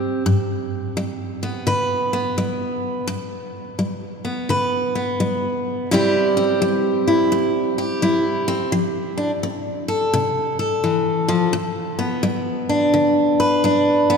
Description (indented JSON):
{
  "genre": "country",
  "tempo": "85 BPM",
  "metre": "4/4",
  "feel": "swing 64% on 8ths",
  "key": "C major",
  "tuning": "A4 = 440 Hz",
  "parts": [
    { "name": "picked steel-string acoustic guitar", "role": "solo", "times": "0.0-14.2 s", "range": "G2 to B4", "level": "-18 LUFS", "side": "equal", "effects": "none" }
  ],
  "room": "wet cathedral reverb, RT60 5.8 s",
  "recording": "recorded in a church or concert hall",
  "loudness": "-18 LUFS",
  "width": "side -6 dB against mid",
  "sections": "0.0-5.9 A section; 5.9-14.2 B section",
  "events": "none",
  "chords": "0.3 G; 5.9 C; 8.7 F; 11.5 G"
}